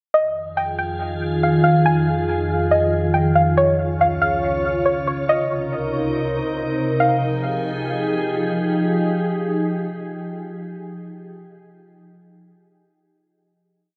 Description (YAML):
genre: hip hop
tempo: 140 BPM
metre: 4/4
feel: half-time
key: F minor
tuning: A4 = 440 Hz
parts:
  - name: soft round pluck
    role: melody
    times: 0.1-8.2 s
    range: Db5 to Ab5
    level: -23 LUFS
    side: equal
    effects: chorus, low-pass filter, dub echo
  - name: glassy FM pad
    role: sustained chords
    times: 0.7-11.2 s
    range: C2 to Db5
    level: -22 LUFS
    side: equal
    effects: ensemble chorus, built-in reverb
room: moderate spring reverb, RT60 1.8 s, digital ambience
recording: echo-heavy mix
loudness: -20 LUFS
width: mono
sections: 0.1-7.0 verse; 7.0-10.4 final chord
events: none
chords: 0.1 Fm9; 3.6 Db; 5.3 Cm7; 7.0 Fm9